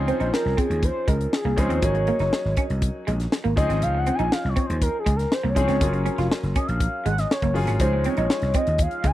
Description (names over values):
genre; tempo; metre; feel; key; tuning
polished 1980s jazz-funk pop; 120 BPM; 4/4; straight; Db major; A4 = 440 Hz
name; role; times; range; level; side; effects
clear grand piano; accompaniment; 0.0-9.1 s; F3 to Ab4; -29 LUFS; left 1 dB; lush chorus
vintage slap bass; bass; 0.0-9.1 s; F1 to Eb2; -24 LUFS; equal; none
expressive portamento lead; melody; 0.1-9.1 s; Ab4 to Ab5; -26 LUFS; left 1 dB; chorus
electric guitar through a small old amp; riff; 0.1-9.1 s; Ab3 to F4; -29 LUFS; right 4 dB; wide subtle chorus
tight funk drum kit; drums; 0.1-9.1 s; hi-hat, kick drum, snare drum; -24 LUFS; equal; none
room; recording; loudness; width
studio ambience; dry, close 1970s-style studio recording; -20 LUFS; side -14 dB against mid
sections
0.0-9.1 A section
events
analog synth lead solo 0.0-9.1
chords
0.0 Dbmaj9; 1.8 Ab9sus4; 3.6 Dbmaj9; 5.8 Gbmaj7; 7.8 Dbmaj9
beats
0.33 0.83 1.33 | 1.83 2.33 2.82 3.32 | 3.82 4.32 4.82 5.32 | 5.81 6.31 6.81 7.31 | 7.80 8.30 8.80